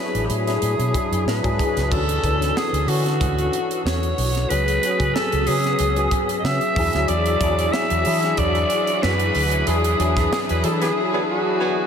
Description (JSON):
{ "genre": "polished 1980s jazz-funk pop", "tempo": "93 BPM", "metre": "4/4", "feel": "swing 54% on 16ths", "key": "unclear", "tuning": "A4 = 440 Hz", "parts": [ { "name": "growling alto saxophone", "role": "melody", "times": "0.0-11.9 s", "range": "F#4 to E5", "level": "-23 LUFS", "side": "right 1 dB", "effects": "ping-pong delay" }, { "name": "barky tine electric piano", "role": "accompaniment", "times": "0.0-11.9 s", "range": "E3 to A4", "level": "-24 LUFS", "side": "left 2 dB", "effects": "overdrive, ensemble chorus" }, { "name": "vintage muted fingered electric bass", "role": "bass", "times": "0.1-10.9 s", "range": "A1 to E3", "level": "-23 LUFS", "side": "equal", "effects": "none" }, { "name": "crisp fusion drum kit", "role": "drums", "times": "0.1-11.0 s", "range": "crash cymbal, hi-hat, kick drum, snare drum", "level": "-27 LUFS", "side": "right 1 dB", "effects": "none" }, { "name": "rich symphonic string section", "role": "sustained chords", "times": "7.1-11.9 s", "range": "E3 to G#4", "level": "-29 LUFS", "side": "equal", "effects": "none" }, { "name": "warm horn section", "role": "second line", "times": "10.8-11.9 s", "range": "D3 to G#4", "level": "-26 LUFS", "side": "right 2 dB", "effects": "none" } ], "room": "moderate huge ambient reverb, RT60 7.4 s", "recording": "dreamy mix soaked in reverb", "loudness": "-18 LUFS", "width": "side -7 dB against mid", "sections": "0.0-1.9 A section; 1.9-11.9 B section", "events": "band accent 9.7-11.9", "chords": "0.0 E9/A; 1.9 Dmaj9; 4.5 C#7sus4; 6.8 E9" }